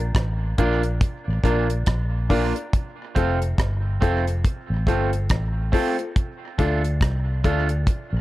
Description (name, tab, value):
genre	roots reggae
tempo	70 BPM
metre	4/4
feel	swing 59% on 16ths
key	F major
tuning	A4 = 438 Hz
part	vintage muted fingered electric bass	bass	0.0-8.2 s	F1 to D2	-23 LUFS	equal	none
part	deep reggae drum kit	drums	0.1-8.1 s	hi-hat, kick drum, rim click	-22 LUFS	equal	none
part	electric guitar at the edge of break-up	accompaniment	0.6-7.7 s	A3 to F4	-28 LUFS	right 5 dB	dub echo
part	dark upright piano	stabs	0.6-7.7 s	C4 to Bb4	-28 LUFS	left 4 dB	none
room	light reverb, studio reverb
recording	none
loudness	-20 LUFS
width	side -16 dB against mid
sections	0.0-8.2 A section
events	none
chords	0.0 Bb; 2.7 F; 6.2 Dm